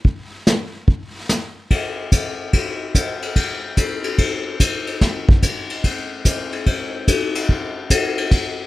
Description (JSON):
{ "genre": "country", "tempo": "145 BPM", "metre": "4/4", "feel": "swing 66% on 8ths", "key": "none", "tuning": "none", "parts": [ { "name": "vintage brush drum kit", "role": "drums", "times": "0.0-8.4 s", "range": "brushed snare drum, hi-hat, kick drum, ride cymbal, snare drum", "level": "-17 LUFS", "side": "equal", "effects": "none" } ], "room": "light reverb", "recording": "none", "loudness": "-18 LUFS", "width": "side -17 dB against mid", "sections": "0.0-1.7 A section; 1.7-8.7 B section", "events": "none", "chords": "none" }